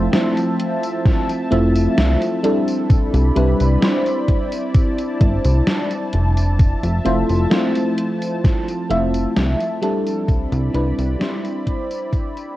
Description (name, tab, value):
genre	vaporwave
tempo	65 BPM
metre	4/4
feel	straight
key	F lydian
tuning	A4 = 440 Hz
part	FM electric piano with soft pad layer	accompaniment	0.0-12.6 s	G3 to E5	-20 LUFS	equal	analog chorus, analog delay
part	lush unison pad	sustained chords	0.0-12.6 s	F3 to B5	-26 LUFS	equal	chorus, phaser
part	chorused synth bass	bass	0.0-11.2 s	F1 to C2	-18 LUFS	equal	none
part	gated 80s digital drum machine	drums	0.1-12.6 s	hi-hat, snare drum, tambourine	-23 LUFS	equal	gated reverb, gated reverb snare
part	electronic kick drum	drums	1.1-12.3 s	none	-16 LUFS	equal	none
room	digital ambience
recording	worn, warbling old tape, cassette tape, warbly pitch drift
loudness	-16 LUFS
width	side -15 dB against mid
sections	0.0-12.6 A section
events	fade-out 7.8-12.6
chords	0.0 Fmaj7; 2.9 Cmaj9; 6.6 Fmaj7; 10.3 Cmaj9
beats	0.13 1.05 1.98 | 2.90 3.82 4.75 5.67 | 6.59 7.52 8.44 9.36 | 10.29 11.21 12.13